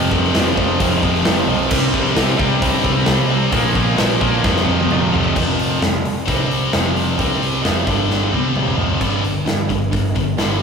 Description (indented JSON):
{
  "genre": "hard rock",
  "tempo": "132 BPM",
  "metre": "4/4",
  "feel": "straight",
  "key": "unclear",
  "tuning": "A4 = 444 Hz",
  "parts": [
    { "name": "chamber organ, principal", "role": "sustained chords", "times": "0.0-5.3 s", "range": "F3 to D5", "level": "-30 LUFS", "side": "equal", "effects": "none" },
    { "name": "distorted electric guitar", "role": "riff", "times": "0.0-10.6 s", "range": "F2 to C4", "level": "-22 LUFS", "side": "right 4 dB", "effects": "overdrive" },
    { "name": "distorted electric guitar", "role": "riff", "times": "0.0-5.4 s", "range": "F2 to C4", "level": "-23 LUFS", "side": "equal", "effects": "distortion" },
    { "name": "scooped high-gain guitar", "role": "riff", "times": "0.0-10.6 s", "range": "F2 to C4", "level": "-21 LUFS", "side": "left 6 dB", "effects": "distortion" },
    { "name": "hollow-body short-scale picked electric bass", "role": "bass", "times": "0.0-10.6 s", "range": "F1 to G2", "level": "-22 LUFS", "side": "equal", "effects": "none" },
    { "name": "big rock drum kit", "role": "drums", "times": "0.1-10.5 s", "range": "crash cymbal, hi-hat, kick drum, snare drum, toms", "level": "-20 LUFS", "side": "equal", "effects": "none" }
  ],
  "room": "wet church reverb, RT60 3.9 s",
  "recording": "rough rehearsal-room recording, warm saturation",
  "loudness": "-14 LUFS",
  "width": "side -6 dB against mid",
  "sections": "0.0-5.4 A section; 5.4-9.0 B section; 9.0-10.6 C section",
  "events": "drum fill 4.4-5.4, 8.1-9.0",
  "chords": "0.0 F5; 1.7 C5; 3.5 Bb5; 4.4 F5; 6.3 C5; 6.7 F5; 7.2 C5; 7.6 F5; 7.9 G5; 8.3 C5; 8.8 F5; 9.0 G5"
}